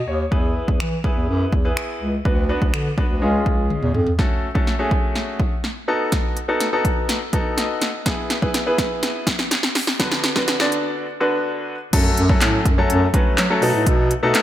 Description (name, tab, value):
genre	dance-pop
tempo	124 BPM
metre	4/4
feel	straight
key	F# minor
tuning	A4 = 439 Hz
part	clear concert grand piano	accompaniment	0.0-14.4 s	D3 to D#5	-22 LUFS	left 1 dB	sidechain pumping
part	dark bass clarinet	bass	0.1-4.1, 11.9-14.4 s	C#2 to B3	-21 LUFS	equal	sidechain pumping
part	deep house drum kit	drums	0.3-14.4 s	crash cymbal, finger snaps, handclaps, hi-hat, kick drum, snare drum, toms	-20 LUFS	equal	none
room	light reverb, digital ambience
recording	high-pass filter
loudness	-17 LUFS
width	side -12 dB against mid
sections	0.0-4.2 A section; 4.2-11.9 B section; 11.9-14.4 C section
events	grand piano fill 0.0-0.3, 7.3-8.1; drum fill 3.7-4.2, 4.2-11.0; build-up 4.2-11.9; filter sweep 4.2-11.9; break 11.0-11.9; drop 11.9-14.4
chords	0.3 E; 2.3 Bm/D; 3.2 C#; 4.2 F#m; 5.9 B7; 8.1 E; 10.0 Bm/D; 11.9 F#m; 13.6 B7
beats	| 0.32 0.80 1.28 1.77 | 2.25 2.74 3.22 3.70 | 4.19 4.67 5.16 5.64 | 6.12 6.61 7.09 7.58 | 8.06 8.54 9.03 9.51 | 9.99 10.48 10.96 11.45 | 11.93 12.41 12.90 13.38 | 13.87 14.35